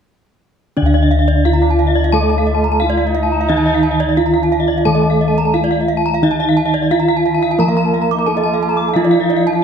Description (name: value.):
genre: Balinese gamelan.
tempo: 88 BPM.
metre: 4/4.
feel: straight.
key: D pelog.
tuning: A4 = 440 Hz.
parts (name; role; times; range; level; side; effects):
gamelan-type bronze metallophone; melody; 0.8-9.6 s; D4 to Bb4-20c; -17 LUFS; right 3 dB; none.
gamelan-type bronze metallophone; accompaniment; 0.8-9.6 s; D3 to Bb3-20c; -21 LUFS; left 1 dB; none.
gamelan-type bronze metallophone; arpeggios; 0.8-9.6 s; D5 to D6; -20 LUFS; left 4 dB; none.
gamelan-type bossed gongs; bass; 0.8-9.6 s; D2 to F4-30c; -18 LUFS; left 2 dB; none.
gamelan-type bronze metallophone; arpeggios; 0.9-9.6 s; D5 to D6; -21 LUFS; right 5 dB; none.
mellow flugelhorn; second line; 1.6-9.6 s; Bb3 to F4-30c; -24 LUFS; right 4 dB; none.
room: moderate scoring stage reverb, RT60 1.4 s.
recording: dark, warm production.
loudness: -12 LUFS.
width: side -7 dB against mid.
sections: 0.8-9.6 A section.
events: none.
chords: none.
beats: | 0.77 1.45 2.13 2.82 | 3.50 4.18 4.86 5.54 | 6.23 6.91 7.59 8.27 | 8.95 9.63.